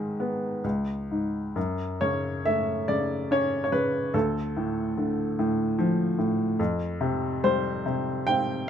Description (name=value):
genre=classical, lyrical solo piano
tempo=65-76 BPM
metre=3/4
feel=rubato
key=unclear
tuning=A4 = 440 Hz
part: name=clear upright piano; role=solo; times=0.0-8.7 s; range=C#2 to G5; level=-24 LUFS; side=equal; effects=none
room=little or no reverb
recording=close, detailed microphones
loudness=-24 LUFS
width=side -8 dB against mid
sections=0.0-1.6 A section; 1.6-8.7 B section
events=none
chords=0.0 G#m; 0.6 C#5; 1.6 F#m; 4.1 Dm; 6.6 Fsus2